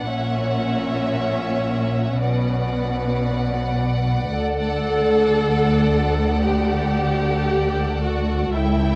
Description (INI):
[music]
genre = classical, slow romantic movement for string orchestra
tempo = 57 BPM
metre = 4/4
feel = rubato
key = unclear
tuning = A4 = 438 Hz
[part]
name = rich chamber violin section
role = melody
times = 0.0-9.0 s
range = F#5 to G5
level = -32 LUFS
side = equal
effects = none
[part]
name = warm studio violin section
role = second line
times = 0.0-9.0 s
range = A4 to E5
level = -31 LUFS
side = equal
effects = none
[part]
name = rich symphonic viola section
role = accompaniment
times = 0.0-9.0 s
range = C#4 to A4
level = -26 LUFS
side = equal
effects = none
[part]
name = dark chamber double bass section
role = bass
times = 0.0-9.0 s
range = A#1 to D2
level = -27 LUFS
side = equal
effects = none
[part]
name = warm chamber cello section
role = bass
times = 0.0-9.0 s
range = C#2 to B2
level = -26 LUFS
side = equal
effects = none
[sound]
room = light reverb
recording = worn, warbling old tape, cassette tape, warbly pitch drift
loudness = -21 LUFS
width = mono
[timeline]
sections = 0.0-9.0 A section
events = none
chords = 0.1 F#7/A#; 2.2 Bm; 4.3 D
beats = | 0.12 1.17 2.22 3.26 | 4.33 5.40 6.42 7.48 | 8.53